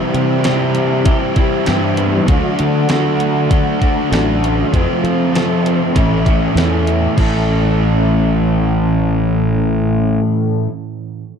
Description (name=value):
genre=rock, shoegaze and dream pop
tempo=98 BPM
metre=4/4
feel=straight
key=unclear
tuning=A4 = 440 Hz
part: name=twelve-string electric guitar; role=arpeggios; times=0.0-10.7 s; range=E3 to A4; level=-24 LUFS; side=right 1 dB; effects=none
part: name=crunchy overdriven guitar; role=riff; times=0.0-10.7 s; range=F2 to G4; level=-18 LUFS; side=left 10 dB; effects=lush chorus
part: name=overdriven electric guitar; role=riff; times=0.0-10.7 s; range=A2 to A4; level=-19 LUFS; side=right 13 dB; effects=reverse reverb
part: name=fuzz fingered electric bass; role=bass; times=0.1-10.2 s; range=A1 to F3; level=-18 LUFS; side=equal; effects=overdrive
part: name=crisp 8-bit digital drum machine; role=drums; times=0.1-7.3 s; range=crash cymbal, hi-hat, kick drum, snare drum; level=-17 LUFS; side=equal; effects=none
room=digital ambience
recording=dark, warm production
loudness=-13 LUFS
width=side -7 dB against mid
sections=0.0-7.2 A section; 7.2-9.6 B section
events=none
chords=0.0 Cmaj7; 2.3 D; 4.7 F6; 5.9 A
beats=0.45 1.06 1.67 | 2.28 2.89 3.50 4.11 | 4.72 5.33 5.95 6.56 | 7.17 7.78 8.39 9.00